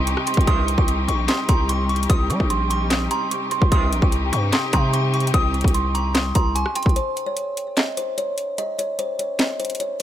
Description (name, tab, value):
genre	hip hop, trap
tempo	148 BPM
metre	4/4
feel	half-time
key	C phrygian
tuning	A4 = 445 Hz
part	kalimba	melody	0.0-10.0 s	C5 to Eb6	-25 LUFS	right 2 dB	digital delay
part	muted studio string section	sustained chords	0.0-6.9 s	C3 to G4	-27 LUFS	left 2 dB	none
part	growling 808-style bass	bass	0.0-7.0 s	Bb1 to G3	-22 LUFS	equal	none
part	trap drum kit	drums	0.1-10.0 s	handclaps, hi-hat, kick drum, rim click, snare drum	-21 LUFS	equal	none
part	delicate synth tine bell	second line	0.5-7.0 s	G5 to Eb6	-29 LUFS	left 3 dB	chorus, digital delay
part	warm brass ensemble	stabs	0.5-0.8, 3.7-4.0 s	G2 to Eb3	-32 LUFS	right 5 dB	none
room	small room ambience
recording	none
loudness	-18 LUFS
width	side -11 dB against mid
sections	0.0-7.0 A section; 7.0-10.0 B section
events	break 7.0-10.0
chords	0.0 Cm; 7.0 N.C.